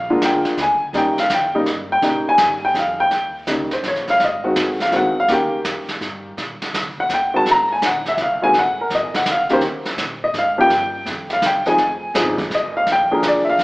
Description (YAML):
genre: jazz piano trio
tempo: 166 BPM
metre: 3/4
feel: swing 66% on 8ths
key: Eb mixolydian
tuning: A4 = 440 Hz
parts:
  - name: warm upright piano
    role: melody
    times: 0.0-13.6 s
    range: Db3 to Bb5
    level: -16 LUFS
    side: equal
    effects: none
  - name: upright bass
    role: bass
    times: 0.0-13.6 s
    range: F1 to Bb2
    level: -35 LUFS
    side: equal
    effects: none
  - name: jazz brush drum kit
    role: drums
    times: 0.2-13.6 s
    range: brushed snare drum, hi-hat, kick drum, snare drum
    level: -25 LUFS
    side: right 1 dB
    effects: none
room: wet large studio reverb, RT60 1.4 s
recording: band playing live in one room, AM radio sound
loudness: -16 LUFS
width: side -22 dB against mid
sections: 0.0-3.1 A section; 3.1-13.6 A section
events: upright piano solo 0.0-13.6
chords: 0.0 Bb7; 0.9 Eb7; 4.2 Ab7; 5.3 Eb7; 6.4 Bbm; 7.1 Eb; 7.5 Ab7; 9.6 Eb5; 10.7 Fsus2; 11.4 C5; 11.8 Fm7; 12.9 Bb7